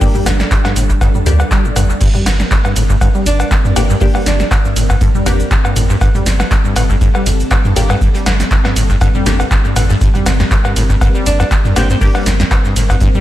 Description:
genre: acid house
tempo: 120 BPM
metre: 4/4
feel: swing 54% on 16ths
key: G minor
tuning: A4 = 439 Hz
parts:
  - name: string machine, full ensemble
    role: sustained chords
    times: 0.0-13.2 s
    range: G3 to Bb4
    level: -22 LUFS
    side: equal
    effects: ensemble chorus, sidechain pumping
  - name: deep acid bass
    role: riff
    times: 0.0-13.2 s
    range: G1 to G3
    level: -18 LUFS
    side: equal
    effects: tube saturation, lush chorus, sidechain pumping, dub echo
  - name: filtered dub chord stab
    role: stabs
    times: 0.0-12.2 s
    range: Bb3 to G4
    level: -23 LUFS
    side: left 3 dB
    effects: phaser, cassette tape, tape echo
  - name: cloth-damped thuddy drum kit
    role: drums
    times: 0.0-13.1 s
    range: hi-hat, snare drum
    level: -34 LUFS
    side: right 2 dB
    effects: none
  - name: electronic kick drum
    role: drums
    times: 0.0-13.1 s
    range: none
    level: -14 LUFS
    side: equal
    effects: none
  - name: punchy analog drum machine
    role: drums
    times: 0.0-13.2 s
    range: cowbell, crash cymbal, handclaps, hi-hat, ride cymbal, shaker, snare drum, toms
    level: -18 LUFS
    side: equal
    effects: tape echo
  - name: warm sub bass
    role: bass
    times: 0.3-12.9 s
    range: G1 to D2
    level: -15 LUFS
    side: equal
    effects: sidechain pumping
  - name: breathy alto saxophone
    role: melody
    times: 3.3-4.5, 11.3-12.0 s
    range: C4 to D4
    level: -23 LUFS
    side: right 2 dB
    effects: tape echo
room: light reverb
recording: echo-heavy mix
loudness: -10 LUFS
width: side -14 dB against mid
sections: 0.0-13.2 A section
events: none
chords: 0.0 Gm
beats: | 0.01 0.51 1.01 1.51 | 2.01 2.51 3.01 3.51 | 4.01 4.51 5.01 5.51 | 6.01 6.51 7.01 7.51 | 8.01 8.51 9.01 9.51 | 10.01 10.51 11.01 11.51 | 12.01 12.51 13.01

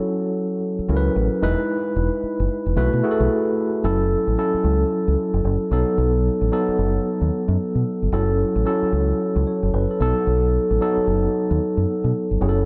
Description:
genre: R&B, new jack swing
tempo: 112 BPM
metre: 4/4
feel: swing 61% on 16ths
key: unclear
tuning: A4 = 440 Hz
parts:
  - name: tine electric piano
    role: accompaniment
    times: 0.0-12.7 s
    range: F#3 to C#5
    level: -23 LUFS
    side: equal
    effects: none
  - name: deep dub fingered electric bass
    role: bass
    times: 0.8-12.7 s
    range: E1 to B2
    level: -23 LUFS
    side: equal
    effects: none
room: moderate lush hall reverb, RT60 2.4 s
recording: dark, warm production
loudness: -21 LUFS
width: mono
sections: 0.0-3.8 A section; 3.8-12.7 B section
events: none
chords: 0.0 F#m7; 1.4 Emaj7; 2.8 B7sus4; 3.8 F#m7; 5.7 B7; 8.1 F#m7; 10.0 B7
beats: 0.09 0.63 1.16 | 1.70 2.23 2.77 3.31 | 3.84 4.38 4.91 5.45 | 5.98 6.52 7.05 7.59 | 8.13 8.66 9.20 9.73 | 10.27 10.80 11.34 11.88 | 12.41

